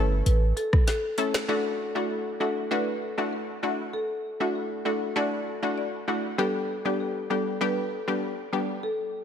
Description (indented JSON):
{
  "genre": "dancehall",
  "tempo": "98 BPM",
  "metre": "4/4",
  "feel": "straight",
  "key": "D major",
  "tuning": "A4 = 436 Hz",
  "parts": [
    { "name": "marimba with medium mallets", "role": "melody", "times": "0.0-9.0 s", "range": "F#4 to D5", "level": "-31 LUFS", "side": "left 1 dB", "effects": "ping-pong delay" },
    { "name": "analog pluck", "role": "accompaniment", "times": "0.0-8.7 s", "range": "G3 to A4", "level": "-28 LUFS", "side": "left 1 dB", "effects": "chorus" },
    { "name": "warm 808-style bass", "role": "bass", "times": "0.0-0.5 s", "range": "G1 to A1", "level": "-21 LUFS", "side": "equal", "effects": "none" },
    { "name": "afro-pop drum kit", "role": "drums", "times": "0.3-1.5 s", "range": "finger snaps, hi-hat, kick drum, rim click, snare drum", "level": "-24 LUFS", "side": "equal", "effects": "none" }
  ],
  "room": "moderate plate reverb, RT60 2.8 s",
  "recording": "dreamy mix soaked in reverb",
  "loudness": "-25 LUFS",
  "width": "side -8 dB against mid",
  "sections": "0.0-1.5 A section; 1.5-9.2 B section",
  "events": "none",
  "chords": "0.0 A; 1.5 Dadd9; 6.4 G"
}